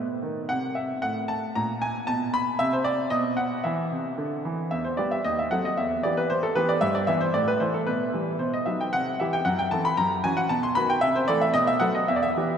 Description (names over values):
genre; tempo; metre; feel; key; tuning
classical-period piano sonatina; 114 BPM; 2/4; straight; E minor; A4 = 440 Hz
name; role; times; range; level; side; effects
clear baby grand piano; solo; 0.0-12.6 s; D#2 to C6; -23 LUFS; equal; none
room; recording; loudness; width
wet cathedral reverb, RT60 5.7 s; in a vast, echoing space; -23 LUFS; side -8 dB against mid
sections
0.0-4.7 A section; 4.7-12.6 A section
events
none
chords
0.0 B; 0.5 N.C.; 3.7 Cadd9; 4.7 Em; 5.2 D#dim7; 5.8 Em; 6.8 Em/G; 7.3 A5; 7.9 Em/B; 8.4 B; 8.9 C; 9.5 F#m7b5; 10.0 F#7; 10.5 B; 11.0 Am/C; 11.6 B5